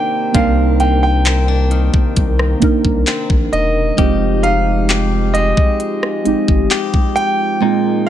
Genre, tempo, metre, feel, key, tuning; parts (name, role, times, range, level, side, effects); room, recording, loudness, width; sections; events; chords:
contemporary R&B; 66 BPM; 4/4; straight; A4 = 437 Hz
warm concert grand piano; melody; 0.0-8.1 s; Eb5 to G5; -19 LUFS; right 1 dB; tape echo
muted felt-like synth keys; accompaniment; 0.0-8.1 s; Ab3 to Bb4; -18 LUFS; right 3 dB; chorus, phaser
warm French horn section; sustained chords; 0.0-8.1 s; Eb3 to Bb4; -26 LUFS; equal
direct-recorded clean electric guitar; arpeggios; 0.0-8.1 s; Bb2 to G4; -24 LUFS; left 7 dB
round analog bass; bass; 0.3-6.7 s; E1 to C2; -17 LUFS; equal
trap drum kit; drums; 0.3-7.4 s; handclaps, hi-hat, kick drum, rim click; -16 LUFS; equal; vintage 12-bit sampler grit
little or no reverb; -12 LUFS; side -11 dB against mid
0.0-8.1 A section
drums muted 7.6-8.1
0.0 Cm9; 4.0 Fm9